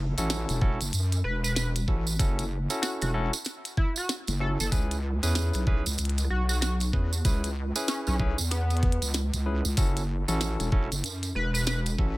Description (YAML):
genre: glitch hop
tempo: 95 BPM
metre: 4/4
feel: swing 61% on 16ths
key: F# minor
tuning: A4 = 439 Hz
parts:
  - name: wobble bass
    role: bass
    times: 0.0-12.2 s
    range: E1 to F#2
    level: -28 LUFS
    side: equal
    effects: chorus
  - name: barky tine electric piano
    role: stabs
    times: 0.2-12.2 s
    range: C#4 to B4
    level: -35 LUFS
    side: equal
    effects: medium stereo tremolo, sidechain pumping, dub echo
  - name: glitchy drum kit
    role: drums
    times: 0.2-12.0 s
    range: hi-hat, rim click, snare drum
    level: -33 LUFS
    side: left 1 dB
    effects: small room reverb
  - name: tambourine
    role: percussion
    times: 0.2-12.0 s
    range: none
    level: -34 LUFS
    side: right 5 dB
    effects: none
  - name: electronic kick drum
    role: drums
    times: 0.6-12.1 s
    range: none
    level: -25 LUFS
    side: equal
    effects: overdrive, small room reverb
  - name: sync lead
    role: melody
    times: 1.2-11.8 s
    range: B3 to B4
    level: -36 LUFS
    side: equal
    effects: chorus, dub echo
room: little or no reverb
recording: none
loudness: -25 LUFS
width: side -19 dB against mid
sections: 0.0-12.2 A section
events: none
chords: 0.0 F#m7; 4.7 C#m7; 9.8 F#m7